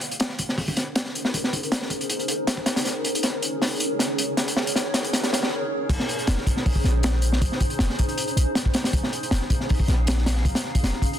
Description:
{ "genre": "drum and bass, jungle", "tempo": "158 BPM", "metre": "4/4", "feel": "straight", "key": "Bb minor", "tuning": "A4 = 441 Hz", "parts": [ { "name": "granular cloud pad", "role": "sustained chords", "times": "0.0-11.2 s", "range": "Db4 to F5", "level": "-29 LUFS", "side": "equal", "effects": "built-in reverb, vintage 12-bit sampler grit" }, { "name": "crunchy breakbeat drum kit", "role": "drums", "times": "0.0-11.2 s", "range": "crash cymbal, hi-hat, kick drum, snare drum", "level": "-23 LUFS", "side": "equal", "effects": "high-pass filter on kick, high-pass filter on hats, high-pass filter on cymbals, high-pass filter on snare, high-pass filter on room" }, { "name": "warm 808-style bass", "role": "bass", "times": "5.9-10.9 s", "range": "F1 to Bb1", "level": "-22 LUFS", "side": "equal", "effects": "none" } ], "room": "light reverb", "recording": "dense, heavily limited modern master", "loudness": "-21 LUFS", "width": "side -10 dB against mid", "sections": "0.0-5.9 A section; 5.9-11.2 B section", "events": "build-up 0.0-5.9; filter sweep on ambient pad 0.0-5.9; drum fill 2.9-5.5; break 5.5-5.9; drop 5.9-11.2", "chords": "0.0 Bbm11", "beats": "0.20 0.58 0.96 | 1.34 1.72 2.10 2.48 | 2.86 3.24 3.62 4.00 | 4.38 4.76 5.14 5.52 | 5.90 6.28 6.66 7.04 | 7.42 7.80 8.18 8.55 | 8.94 9.31 9.70 10.07 | 10.45 10.83" }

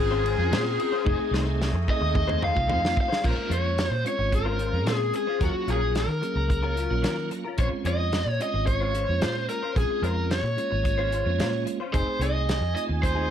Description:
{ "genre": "straight-eighth soul blues", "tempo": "110 BPM", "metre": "4/4", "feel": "straight", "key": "Bb minor", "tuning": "A4 = 439 Hz", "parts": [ { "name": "overdriven electric guitar", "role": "melody", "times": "0.0-13.3 s", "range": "Gb4 to F5", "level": "-27 LUFS", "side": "left 2 dB", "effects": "harmonic tremolo" }, { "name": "tonewheel organ", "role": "accompaniment", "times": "0.0-13.3 s", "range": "Gb3 to Ab4", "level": "-33 LUFS", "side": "right 4 dB", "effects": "slow rotary speaker, chorus vibrato" }, { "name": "brilliant horn section", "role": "sustained chords", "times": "0.0-3.2, 11.9-13.3 s", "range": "A3 to Ab5", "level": "-38 LUFS", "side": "right 1 dB", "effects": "none" }, { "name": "vintage muted fingered electric bass", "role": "bass", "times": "0.0-13.3 s", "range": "F1 to Eb3", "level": "-27 LUFS", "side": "equal", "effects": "none" }, { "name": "direct-recorded clean electric guitar", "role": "stabs", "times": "0.1-13.3 s", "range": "Gb3 to C5", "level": "-35 LUFS", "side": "left 5 dB", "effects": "ensemble chorus" }, { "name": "warm soul drum kit", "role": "drums", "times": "0.3-13.2 s", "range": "crash cymbal, hi-hat, kick drum, ride cymbal, snare drum, toms", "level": "-29 LUFS", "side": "equal", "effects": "none" } ], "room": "light reverb, small room ambience", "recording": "none", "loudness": "-23 LUFS", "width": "side -9 dB against mid", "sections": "0.0-3.2 A section; 3.2-13.3 B section", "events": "overdriven electric guitar solo 0.0-3.2; drum fill 1.1-3.2", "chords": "0.0 Bbm9; 1.1 F7#9; 3.2 Bbm9; 5.4 Ebm9; 7.6 Bbm9; 11.9 F7#9", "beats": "0.52 | 1.06 1.61 2.15 2.69 | 3.23 3.78 4.32 4.87 | 5.41 5.95 6.50 7.04 | 7.58 8.13 8.67 9.22 | 9.76 10.31 10.85 11.39 | 11.94 12.48 13.03" }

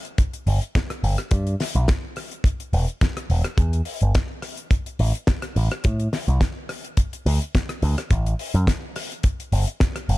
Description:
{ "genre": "nu-disco, nu disco", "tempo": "106 BPM", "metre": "4/4", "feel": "swing 54% on 16ths", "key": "D mixolydian", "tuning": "A4 = 437 Hz", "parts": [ { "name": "damped 70s drum kit", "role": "drums", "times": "0.0-10.2 s", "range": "hi-hat, rim click, snare drum", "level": "-29 LUFS", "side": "left 2 dB", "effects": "none" }, { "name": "kick drum", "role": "drums", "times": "0.2-9.9 s", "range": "none", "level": "-20 LUFS", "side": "equal", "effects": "none" }, { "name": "picked electric bass with an envelope filter", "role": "bass", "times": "0.5-10.2 s", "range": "E1 to A2", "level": "-20 LUFS", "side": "equal", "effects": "none" } ], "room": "little or no reverb", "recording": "dark, warm production", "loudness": "-20 LUFS", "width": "side -19 dB against mid", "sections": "0.0-10.2 A section", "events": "none", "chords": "none", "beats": "| 0.18 0.75 1.32 1.88 | 2.45 3.02 3.58 4.15 | 4.71 5.28 5.84 6.41 | 6.98 7.54 8.11 8.68 | 9.24 9.81" }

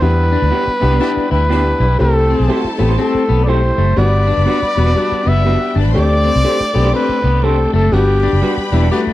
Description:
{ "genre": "soul", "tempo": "121 BPM", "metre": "4/4", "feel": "swing 61% on 8ths", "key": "G major", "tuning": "A4 = 440 Hz", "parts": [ { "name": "breathy trumpet", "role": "melody", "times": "0.0-8.9 s", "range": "G4 to E5", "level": "-18 LUFS", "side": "equal", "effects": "tube saturation" }, { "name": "clear upright piano", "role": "accompaniment", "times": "0.0-9.1 s", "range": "G3 to G4", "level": "-20 LUFS", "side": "left 2 dB", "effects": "none" }, { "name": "overdriven tonewheel organ", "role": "sustained chords", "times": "0.0-9.1 s", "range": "G3 to G4", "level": "-28 LUFS", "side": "right 1 dB", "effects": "slow rotary speaker, chorus vibrato" }, { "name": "vintage muted fingered electric bass", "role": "bass", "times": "0.0-9.1 s", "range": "E1 to E2", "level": "-14 LUFS", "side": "equal", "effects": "none" }, { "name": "electric guitar at the edge of break-up", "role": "riff", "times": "0.3-9.1 s", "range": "A3 to E4", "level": "-23 LUFS", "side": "left 7 dB", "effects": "none" }, { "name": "electric guitar through a small old amp", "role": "stabs", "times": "0.5-8.9 s", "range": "G3 to C5", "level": "-25 LUFS", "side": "right 4 dB", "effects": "none" }, { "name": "warm horn section", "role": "second line", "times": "0.8-2.0, 8.7-9.0 s", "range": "B3 to B4", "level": "-25 LUFS", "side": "right 1 dB", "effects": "none" }, { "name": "warm studio string section", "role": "second line", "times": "2.0-9.1 s", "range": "D4 to D6", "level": "-28 LUFS", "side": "left 2 dB", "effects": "none" } ], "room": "light reverb, small room ambience", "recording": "dark, warm production, vinyl crackle", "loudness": "-12 LUFS", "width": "side -15 dB against mid", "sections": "0.0-9.1 A section", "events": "band accent 0.0-2.0, 7.9-9.1", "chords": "0.0 Em7; 2.0 C6; 4.0 Gmaj7; 6.0 D7sus4; 7.9 Gmaj7", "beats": "| 0.02 0.51 1.01 1.50 | 2.00 2.49 2.98 3.48 | 3.97 4.47 4.96 5.46 | 5.95 6.45 6.94 7.44 | 7.93 8.43 8.92" }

